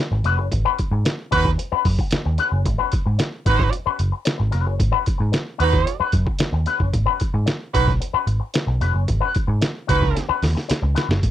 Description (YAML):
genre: funk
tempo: 112 BPM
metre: 4/4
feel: straight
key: G# dorian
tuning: A4 = 444 Hz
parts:
  - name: electric guitar with an envelope filter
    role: accompaniment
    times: 0.0-11.2 s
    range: C#4 to B4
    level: -24 LUFS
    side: left 10 dB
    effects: wah
  - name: vintage muted picked electric bass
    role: bass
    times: 0.1-11.3 s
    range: E#1 to G#2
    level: -20 LUFS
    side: equal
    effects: none
  - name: trip hop sampler-style drum kit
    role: drums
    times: 0.2-11.3 s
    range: hi-hat, kick drum, snare drum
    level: -22 LUFS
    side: equal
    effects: none
  - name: clear horn section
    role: second line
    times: 1.3-10.2 s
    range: D#4 to B4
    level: -21 LUFS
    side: right 8 dB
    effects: none
room: little or no reverb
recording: dry, close 1970s-style studio recording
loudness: -18 LUFS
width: side -12 dB against mid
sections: 0.0-11.2 A section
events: drum fill 10.2-11.2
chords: 0.0 G#m7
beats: | 0.52 1.05 1.59 2.12 | 2.66 3.19 3.73 4.26 | 4.80 5.33 5.87 6.41 | 6.94 7.48 8.01 8.55 | 9.08 9.62 10.16 10.69 | 11.23